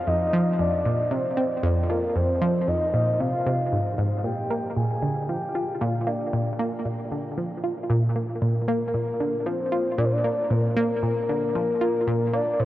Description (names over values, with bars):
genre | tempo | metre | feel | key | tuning
ambient | 115 BPM | 4/4 | straight | unclear | A4 = 440 Hz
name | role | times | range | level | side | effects
soft octave-layered synth lead | melody | 0.0-12.7 s | Bb4 to Ab5 | -26 LUFS | left 1 dB | chorus, tremolo, analog delay
analog pluck | riff | 0.1-12.7 s | F2 to F4 | -24 LUFS | equal | chorus, phaser, analog delay
room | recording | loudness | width
wet huge ambient reverb, RT60 7.1 s | worn, warbling old tape, cassette tape, warbly pitch drift | -22 LUFS | side -14 dB against mid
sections
0.0-12.7 A section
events
none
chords
0.0 F7(no3); 4.2 Bb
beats
| 0.07 0.59 1.12 1.64 | 2.16 2.68 3.20 3.73 | 4.25 4.77 5.29 5.81 | 6.33 6.86 7.38 7.90 | 8.42 8.94 9.46 9.99 | 10.51 11.03 11.55 12.07 | 12.60